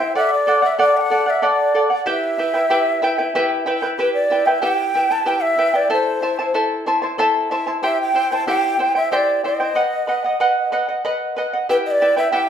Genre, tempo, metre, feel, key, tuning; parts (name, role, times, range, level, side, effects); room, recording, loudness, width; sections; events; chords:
andean folk; 94 BPM; 3/4; straight; E minor; A4 = 438 Hz
breathy mellow quena; melody; 0.0-12.5 s; B4 to A5; -19 LUFS; equal
charango; accompaniment; 0.0-12.5 s; E4 to A5; -18 LUFS; equal
wet large studio reverb, RT60 0.8 s; band playing live in one room; -16 LUFS; side -8 dB against mid
0.0-4.0 A section; 4.0-12.5 B section
0.1 D; 2.1 Em; 5.9 Am; 7.8 C; 9.8 B; 11.7 Em